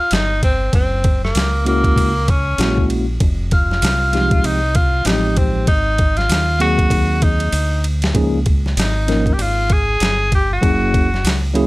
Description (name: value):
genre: hip hop, jazz-hop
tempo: 97 BPM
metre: 4/4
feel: swing 59% on 16ths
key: Ab major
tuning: A4 = 440 Hz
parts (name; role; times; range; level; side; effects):
- breathy tenor saxophone; melody; 0.0-11.4 s; Bb3 to Ab4; -19 LUFS; equal; none
- deep dub fingered electric bass; bass; 0.0-11.7 s; F1 to Eb2; -19 LUFS; equal; none
- boom bap sampler-style drum kit; drums; 0.1-11.7 s; hi-hat, kick drum, ride cymbal, snare drum; -18 LUFS; equal; none
- tine electric piano; accompaniment; 1.6-11.7 s; F3 to Bb4; -20 LUFS; equal; medium stereo tremolo
room: little or no reverb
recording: none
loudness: -14 LUFS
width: side -20 dB against mid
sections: 0.0-11.7 A section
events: drum fill 7.5-8.2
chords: 0.0 Abmaj7 (rootless); 0.7 Gb9; 3.2 Fm9; 5.7 Ab9; 8.2 Db69; 10.6 Gb9